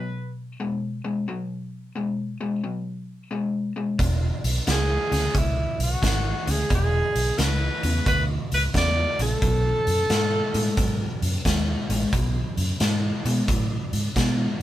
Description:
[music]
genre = electric blues shuffle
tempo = 88 BPM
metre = 4/4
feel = swing 66% on 8ths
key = unclear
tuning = A4 = 439 Hz
[part]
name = clear tenor saxophone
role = melody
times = 0.0-0.3, 4.7-11.2 s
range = E4 to D5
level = -26 LUFS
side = right 1 dB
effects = none
[part]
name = overdriven electric guitar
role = riff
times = 0.0-14.6 s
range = E2 to G#3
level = -29 LUFS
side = left 3 dB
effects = none
[part]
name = vintage muted fingered electric bass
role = bass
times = 4.0-14.5 s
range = E1 to B2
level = -25 LUFS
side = right 1 dB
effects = none
[part]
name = raw garage drum kit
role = drums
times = 4.0-14.4 s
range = hi-hat, kick drum, snare drum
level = -26 LUFS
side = equal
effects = none
[sound]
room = light reverb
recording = band playing live in one room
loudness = -22 LUFS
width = side -13 dB against mid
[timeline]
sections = 0.0-14.6 A section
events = none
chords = 0.0 B5; 4.0 E; 9.4 B7(no3)

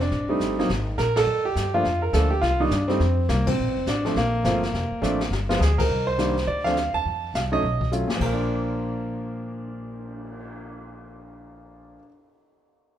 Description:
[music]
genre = jazz piano trio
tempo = 208 BPM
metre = 4/4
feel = swing 62% on 8ths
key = Bb major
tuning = A4 = 436 Hz
[part]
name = clear concert grand piano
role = melody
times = 0.0-12.1 s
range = Bb2 to A5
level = -24 LUFS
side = right 1 dB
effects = none
[part]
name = upright bass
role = bass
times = 0.0-12.0 s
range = F1 to G2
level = -26 LUFS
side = equal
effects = none
[part]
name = jazz brush drum kit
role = drums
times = 0.0-10.4 s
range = brushed snare drum, crash cymbal, cymbal swell, hi-hat, kick drum, ride cymbal, snare drum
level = -32 LUFS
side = left 2 dB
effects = none
[sound]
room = moderate large studio reverb, RT60 1.4 s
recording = minimal, uncompressed stereo recording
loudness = -21 LUFS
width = side -10 dB against mid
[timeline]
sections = 0.0-5.9 A section; 5.9-8.2 B section; 8.2-10.5 C section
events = band accent 1.1, 3.4, 5.8; drum fill 5.0-5.6, 7.9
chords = 0.1 Am7b5; 0.7 Absus2; 1.3 Gm7; 2.4 Cm; 3.0 F5; 3.6 Bbmaj7; 5.3 G7(no3); 5.9 Cm9; 6.5 Dm; 7.0 F7; 7.6 B7; 8.2 Bb

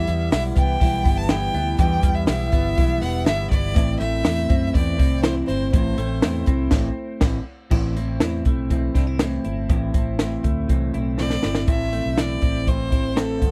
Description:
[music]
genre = jangly indie pop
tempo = 122 BPM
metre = 4/4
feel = straight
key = unclear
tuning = A4 = 445 Hz
[part]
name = clear violin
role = melody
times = 0.0-6.4, 11.2-13.5 s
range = A4 to A5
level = -29 LUFS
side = equal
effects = tape echo
[part]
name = electric guitar through a small old amp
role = accompaniment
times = 0.0-13.5 s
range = A2 to F4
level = -29 LUFS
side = equal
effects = lush chorus
[part]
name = direct-recorded clean electric guitar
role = arpeggios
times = 0.0-13.5 s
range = G2 to E4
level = -32 LUFS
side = equal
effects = analog chorus, tape echo
[part]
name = vintage muted fingered electric bass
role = bass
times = 0.0-13.5 s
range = E1 to F#2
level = -28 LUFS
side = equal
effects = none
[part]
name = compact cocktail drum kit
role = drums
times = 0.1-13.5 s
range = crash cymbal, hi-hat, kick drum, snare drum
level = -23 LUFS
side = equal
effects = none
[sound]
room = little or no reverb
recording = dry, close 1970s-style studio recording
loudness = -21 LUFS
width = mono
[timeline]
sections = 0.0-7.7 A section; 7.7-11.7 B section; 11.7-13.5 C section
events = band accent 6.7-7.7; drum fill 11.2-11.7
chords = 0.0 Em; 3.8 Am

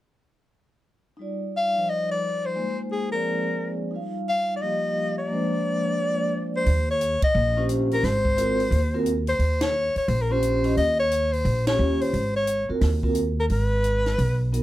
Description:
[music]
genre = jazz, small-group swing and bop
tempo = 175 BPM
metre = 4/4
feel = swing 64% on 8ths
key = Eb major, Eb mixolydian from 6.7 s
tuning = A4 = 437 Hz
[part]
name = vibraphone with soft mallets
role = accompaniment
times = 1.2-14.6 s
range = F3 to F5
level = -27 LUFS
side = right 1 dB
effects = none
[part]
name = breathy soprano saxophone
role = melody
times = 1.6-14.5 s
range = Ab4 to F5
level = -24 LUFS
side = left 1 dB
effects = none
[part]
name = upright bass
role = bass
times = 6.7-14.6 s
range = Ab1 to Eb2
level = -24 LUFS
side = equal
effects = none
[part]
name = compact cocktail drum kit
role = drums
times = 6.7-14.6 s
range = hi-hat, kick drum, ride cymbal, snare drum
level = -30 LUFS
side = equal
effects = none
[sound]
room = light reverb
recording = none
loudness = -21 LUFS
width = side -15 dB against mid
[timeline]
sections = 1.2-6.7 A section; 6.7-14.6 B section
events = band accent 7.2, 9.6, 11.6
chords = 1.2 Ebmaj9; 2.6 Ab69; 3.9 Ebadd9; 5.3 Bb7; 6.7 Eb13; 8.0 Ab13; 9.4 Eb13; 12.1 Ab13; 13.5 Abm

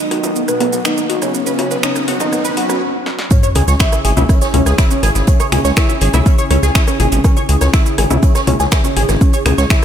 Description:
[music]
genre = melodic techno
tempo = 122 BPM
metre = 4/4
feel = straight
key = C# minor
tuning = A4 = 437 Hz
[part]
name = fat analog lead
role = melody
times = 0.0-2.8 s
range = B3 to F#4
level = -20 LUFS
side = equal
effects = wide subtle chorus, sidechain pumping, analog delay
[part]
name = sweeping resonant pad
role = sustained chords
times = 0.0-9.8 s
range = C#3 to G#4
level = -24 LUFS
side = right 1 dB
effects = chorus, sidechain pumping
[part]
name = tight sequenced synth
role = arpeggios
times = 0.0-9.8 s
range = B3 to C#6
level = -19 LUFS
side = equal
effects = chorus, phaser, sidechain pumping, analog delay
[part]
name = riser and sub drop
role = sound effects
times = 0.0-5.3 s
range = none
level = -24 LUFS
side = equal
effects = none
[part]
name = swelling detuned saw bass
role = bass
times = 0.1-9.7 s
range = F#1 to C#2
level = -15 LUFS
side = equal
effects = sidechain pumping, high-pass filter
[part]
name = deep house drum kit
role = drums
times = 0.1-9.8 s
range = congas, finger snaps, hi-hat, rim click, shaker, snare drum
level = -20 LUFS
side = left 1 dB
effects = overdrive, high-pass filter on perc, high-pass filter on snare, high-pass filter on hats, high-pass filter on room, analog delay
[part]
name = electronic kick drum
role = drums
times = 3.3-9.8 s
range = none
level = -12 LUFS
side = equal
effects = overdrive
[part]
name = swinging big-band drum kit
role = drums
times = 3.3-9.8 s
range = hi-hat, snare drum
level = -29 LUFS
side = right 2 dB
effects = sidechain pumping on hats, high-pass filter on hats, high-pass filter on snare, high-pass filter on room, analog delay
[sound]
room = moderate echo chamber reverb, RT60 2.1 s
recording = echo-heavy mix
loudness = -12 LUFS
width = side -9 dB against mid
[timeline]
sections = 0.0-3.3 A section; 3.3-9.8 B section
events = build-up 0.0-3.3; riser 0.0-2.8; filter sweep on synth arpeggio sound 0.0-3.3; filter sweep on analog synth lead 0.0-3.3; stop 2.8-3.3; drum fill 3.1; drop 3.3-9.8; impact 3.3-5.3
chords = 0.0 B; 3.3 C#m

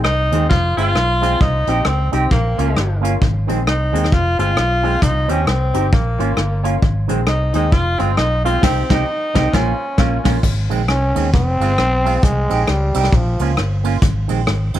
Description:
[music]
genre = ska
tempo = 133 BPM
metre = 4/4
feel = swing 60% on 8ths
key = Ab major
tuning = A4 = 437 Hz
[part]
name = warm tenor saxophone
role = melody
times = 0.0-10.3 s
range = Bb3 to F4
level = -20 LUFS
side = equal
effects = none
[part]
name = fingered electric bass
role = bass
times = 0.0-14.8 s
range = F1 to Eb2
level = -18 LUFS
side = equal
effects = none
[part]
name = soft brush drum kit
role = drums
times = 0.0-14.8 s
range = crash cymbal, hi-hat, kick drum, ride cymbal, rim click, snare drum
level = -18 LUFS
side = equal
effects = none
[part]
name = electric guitar with an envelope filter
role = accompaniment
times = 0.3-14.8 s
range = Eb3 to G4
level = -24 LUFS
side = right 9 dB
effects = none
[part]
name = clear upright piano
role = stabs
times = 0.3-10.4 s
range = C4 to Db5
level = -27 LUFS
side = left 10 dB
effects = none
[part]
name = growling trombone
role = melody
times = 10.9-13.6 s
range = F3 to Db4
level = -20 LUFS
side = equal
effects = none
[sound]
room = moderate spring reverb, RT60 2.0 s, small room ambience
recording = 1960s-style stereo with parts hard left and right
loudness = -14 LUFS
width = side -12 dB against mid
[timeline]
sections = 0.0-10.4 A section; 10.4-14.8 B section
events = band accent 8.6-10.4; trombone solo 10.4-14.8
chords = 0.0 Ab; 0.5 Fm; 1.4 Cm; 2.3 Bbm; 3.2 Ab; 4.1 Fm; 5.0 Cm; 5.9 Bbm; 6.8 Ab; 7.7 Fm; 8.6 Cm; 9.5 Bbm; 10.4 Ab; 11.3 Fm; 12.2 Cm; 13.1 Bbm; 14.0 Ab

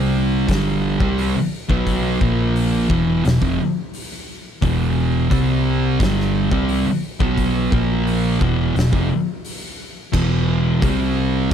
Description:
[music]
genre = stoner and doom metal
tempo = 87 BPM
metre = 4/4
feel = straight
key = E minor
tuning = A4 = 441 Hz
[part]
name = thick fuzz guitar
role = riff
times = 0.0-11.5 s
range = E2 to C4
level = -22 LUFS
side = left 9 dB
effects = distortion
[part]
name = thick fuzz guitar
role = riff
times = 0.0-11.5 s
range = E2 to C4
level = -20 LUFS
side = right 9 dB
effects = distortion
[part]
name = fingered electric bass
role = bass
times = 0.0-11.5 s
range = E1 to C2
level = -23 LUFS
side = left 1 dB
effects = overdrive
[part]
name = oversized low-tuned drum kit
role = drums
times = 0.5-11.5 s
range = crash cymbal, hi-hat, kick drum, snare drum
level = -24 LUFS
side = left 1 dB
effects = none
[sound]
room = little or no reverb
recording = none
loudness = -16 LUFS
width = side -8 dB against mid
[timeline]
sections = 0.0-11.5 A section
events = none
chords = 0.5 Em (rootless); 2.2 A#5; 2.9 E5; 5.3 C5; 6.0 Em (rootless); 7.7 A#5; 8.4 E5; 10.8 C5

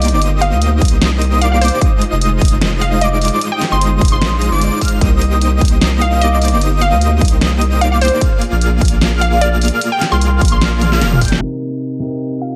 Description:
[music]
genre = future bass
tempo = 150 BPM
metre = 4/4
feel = half-time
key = C minor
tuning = A4 = 440 Hz
[part]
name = glassy wavetable pluck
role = melody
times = 0.0-12.6 s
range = C5 to C6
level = -21 LUFS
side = equal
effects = chorus, sidechain pumping, delay
[part]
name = airy dreamy lead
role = arpeggios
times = 0.0-11.4 s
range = D6 to G6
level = -24 LUFS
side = equal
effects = chorus, sidechain pumping
[part]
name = dense compressed supersaw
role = riff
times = 0.0-11.4 s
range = Ab3 to G5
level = -22 LUFS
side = equal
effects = vintage 12-bit sampler grit, sidechain pumping
[part]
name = saturated sub bass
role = bass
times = 0.0-11.4 s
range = F1 to D2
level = -17 LUFS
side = equal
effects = sidechain pumping
[part]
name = big-room dance drum kit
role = drums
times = 0.0-12.5 s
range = hi-hat, ride cymbal, snare drum, toms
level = -21 LUFS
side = equal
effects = small room reverb
[part]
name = electronic kick drum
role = drums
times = 0.8-11.3 s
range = none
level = -16 LUFS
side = equal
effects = small room reverb
[part]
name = dark baby grand piano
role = accompaniment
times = 11.4-12.6 s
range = C3 to Bb4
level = -22 LUFS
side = equal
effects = sidechain pumping, delay
[sound]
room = light reverb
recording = low-pass filter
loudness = -14 LUFS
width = mono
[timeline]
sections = 0.0-11.4 A section; 11.4-12.6 B section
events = drop 0.0-11.4; drum fill 10.8-11.4; band accent 11.3; filter sweep 11.4-12.6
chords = 0.0 Cm7; 1.8 Fm7; 5.0 Cm7; 8.2 Bb7; 11.4 Cm7

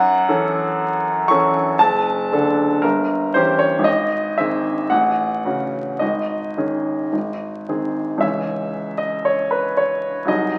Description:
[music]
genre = classical, romantic character piece for solo piano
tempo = 53-60 BPM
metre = 2/4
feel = rubato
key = C# minor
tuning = A4 = 440 Hz
[part]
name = clear baby grand piano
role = solo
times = 0.0-10.6 s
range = F#1 to C#6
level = -20 LUFS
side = equal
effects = none
[sound]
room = wet large studio reverb, RT60 1.2 s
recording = very old 78 rpm record, vinyl crackle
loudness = -20 LUFS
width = mono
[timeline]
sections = 0.0-8.2 A section; 8.2-10.6 B section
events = none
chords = 0.0 F#m7; 1.8 D/F#; 2.8 Gdim7; 3.9 G#; 4.9 F#m/A; 6.0 G#sus4; 7.1 G#; 8.2 C#m

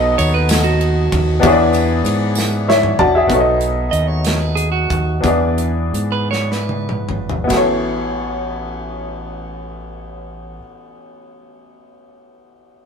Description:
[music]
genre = slow gospel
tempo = 47-64 BPM (dotted quarters)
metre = 6/8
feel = straight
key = A major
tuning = A4 = 440 Hz
[part]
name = clean electric guitar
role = second line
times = 0.0-7.5 s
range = F#4 to D#5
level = -21 LUFS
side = right 7 dB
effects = none
[part]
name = clear grand piano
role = accompaniment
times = 0.0-12.9 s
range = A1 to A5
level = -18 LUFS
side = left 2 dB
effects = none
[part]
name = fingered electric bass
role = bass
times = 0.0-10.6 s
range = G#1 to G#2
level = -20 LUFS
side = equal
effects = none
[part]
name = modern studio drum kit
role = drums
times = 0.2-7.7 s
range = hi-hat, kick drum, ride cymbal, snare drum, toms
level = -23 LUFS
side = equal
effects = none
[part]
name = tambourine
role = percussion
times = 0.2-2.6 s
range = none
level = -29 LUFS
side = right 5 dB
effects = none
[sound]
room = moderate stone room reverb, RT60 1.1 s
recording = rough rehearsal-room recording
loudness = -14 LUFS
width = side -6 dB against mid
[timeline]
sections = 0.0-3.3 A section; 3.3-7.5 B section; 7.5-12.6 C section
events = drum fill 2.4-3.3, 6.3-7.5; grand piano fill 2.4-3.3; slowing down 3.3-7.5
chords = 0.0 B7; 1.4 E7; 3.3 B7; 5.2 E7; 7.5 A69

